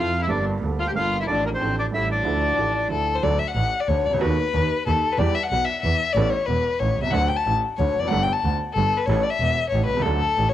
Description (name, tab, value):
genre	tango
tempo	185 BPM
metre	3/4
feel	rubato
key	D minor, D major from 3.2 s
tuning	A4 = 439 Hz
part	bandoneon	melody	0.0-2.9 s	Bb4 to G5	-25 LUFS	equal	cassette tape
part	rich violin	second line	0.0-10.5 s	Bb3 to A5	-23 LUFS	left 5 dB	cassette tape
part	clear upright piano	accompaniment	0.0-10.5 s	E1 to A4	-27 LUFS	right 6 dB	cassette tape
part	clear double bass	bass	0.0-10.5 s	E1 to F2	-25 LUFS	right 1 dB	none
room	moderate spring reverb, RT60 2.1 s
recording	home recording on cassette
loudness	-20 LUFS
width	side -12 dB against mid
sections	0.0-3.2 A section; 3.2-10.5 B section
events	violin solo 3.2-10.5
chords	0.3 Gmadd9; 1.3 Dm/A; 1.9 A7; 2.3 Dmadd9; 3.2 D; 4.2 B7/D#; 5.2 Em; 6.2 Aadd9; 7.1 D; 8.1 Gadd9; 9.1 A